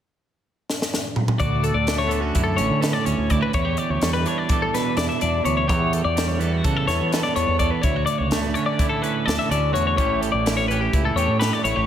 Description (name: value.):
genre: math rock and midwest emo.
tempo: 252 BPM (eighths).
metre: 9/8.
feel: straight.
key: D major.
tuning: A4 = 440 Hz.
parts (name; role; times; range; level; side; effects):
crisp fusion drum kit; drums; 0.7-11.8 s; hi-hat, kick drum, snare drum, toms; -25 LUFS; equal; none.
clean electric guitar; accompaniment; 1.4-11.9 s; D2 to A4; -25 LUFS; right 7 dB; none.
twelve-string electric guitar; arpeggios; 1.4-11.9 s; F#4 to E5; -23 LUFS; left 5 dB; none.
growling fingered electric bass; bass; 1.4-11.9 s; A1 to E3; -25 LUFS; equal; overdrive.
room: moderate lush hall reverb, RT60 2.0 s, small room ambience.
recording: big arena sound.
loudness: -19 LUFS.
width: side -10 dB against mid.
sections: 0.0-1.4 A section; 1.4-11.9 B section.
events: drum fill 0.7-1.4.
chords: 0.0 N.C.; 1.4 Dmaj7; 3.5 Em7; 5.7 A9/E; 7.8 Dmaj7; 10.0 A9.